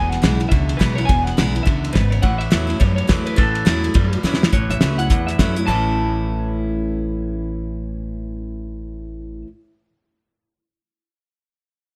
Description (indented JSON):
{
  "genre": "rockabilly",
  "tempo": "210 BPM",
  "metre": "4/4",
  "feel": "swing 60% on 8ths",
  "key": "A major",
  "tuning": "A4 = 440 Hz",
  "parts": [
    { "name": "electric guitar through a small old amp", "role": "melody", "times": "0.0-9.4 s", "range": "A4 to A5", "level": "-28 LUFS", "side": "equal", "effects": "tape echo" },
    { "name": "picked steel-string acoustic guitar", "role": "accompaniment", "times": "0.0-9.5 s", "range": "E2 to E4", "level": "-28 LUFS", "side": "equal", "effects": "none" },
    { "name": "electric guitar through a small old amp", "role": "riff", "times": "0.0-9.5 s", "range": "E2 to E4", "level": "-30 LUFS", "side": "equal", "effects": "none" },
    { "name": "upright bass", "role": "bass", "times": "0.0-9.4 s", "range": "E1 to F#2", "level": "-25 LUFS", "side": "equal", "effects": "none" },
    { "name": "cloth-damped thuddy drum kit", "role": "drums", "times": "0.1-5.6 s", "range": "hi-hat, kick drum, ride cymbal, snare drum", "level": "-21 LUFS", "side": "equal", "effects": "none" }
  ],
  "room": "little or no reverb",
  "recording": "none",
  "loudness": "-19 LUFS",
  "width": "mono",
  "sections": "0.0-4.5 A section; 4.5-5.7 B section; 5.7-8.0 C section",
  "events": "drum fill 4.2",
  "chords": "0.0 E; 2.2 A"
}